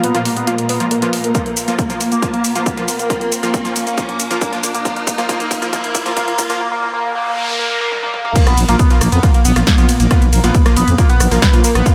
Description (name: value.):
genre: driving peak-time techno.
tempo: 137 BPM.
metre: 4/4.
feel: straight.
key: unclear.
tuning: A4 = 442 Hz.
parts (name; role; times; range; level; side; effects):
overdriven synth lead; riff; 0.0-11.8 s; Bb3 to Cb4; -22 LUFS; equal; distortion, phaser, tube saturation, analog chorus, sidechain pumping, dub echo.
swarming drone; drone; 0.0-11.9 s; Bb2 to Bb3; -28 LUFS; equal; none.
techno drum kit; drums; 0.0-11.9 s; crash cymbal, hi-hat, ride cymbal, rim click, shaker, snare drum, toms; -23 LUFS; equal; sidechain pumping on hats, sidechain pumping on perc, sidechain pumping on toms, sidechain pumping on cymbals.
riser and noise sweep; sound effects; 0.0-8.4 s; none; -28 LUFS; equal; none.
airy breathy pad; texture; 0.0-6.6 s; Bb3 to Bb5; -29 LUFS; equal; none.
supersaw stab; stabs; 0.1-11.9 s; F3 to F4; -25 LUFS; equal; sidechain pumping, delay.
electronic kick drum; drums; 1.3-11.9 s; none; -17 LUFS; equal; none.
growling FM bass; bass; 8.5-11.8 s; Bb1 to F2; -18 LUFS; equal; sidechain pumping.
room: moderate huge ambient reverb, RT60 5.0 s.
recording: high-pass filter.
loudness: -15 LUFS.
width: mono.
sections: 0.0-8.4 A section; 8.4-11.9 B section.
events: build-up 0.0-8.4; riser 0.0-6.6; filter sweep on analog synth lead 0.0-8.4; filter sweep on supersaw synth 0.0-8.4; filter sweep 0.0-8.4; drum fill 1.3-6.6, 7.9-8.4; noise sweep 6.6-8.4; drop 8.4-11.9.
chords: 0.0 Bb5.